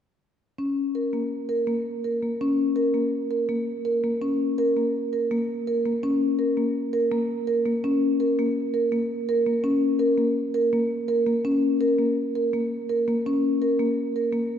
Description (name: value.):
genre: contemporary instrumental, contemporary.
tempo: 166 BPM.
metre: 5/4.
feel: straight.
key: Bb minor.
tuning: A4 = 441 Hz.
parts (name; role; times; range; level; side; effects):
marimba with soft mallets; solo; 0.6-14.5 s; Bb3 to Bb4; -22 LUFS; equal; none.
room: wet concert hall reverb, RT60 2.4 s.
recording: heard from further back in the room.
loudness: -22 LUFS.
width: side -9 dB against mid.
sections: 0.6-7.8 A section; 7.8-14.6 B section.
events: none.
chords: none.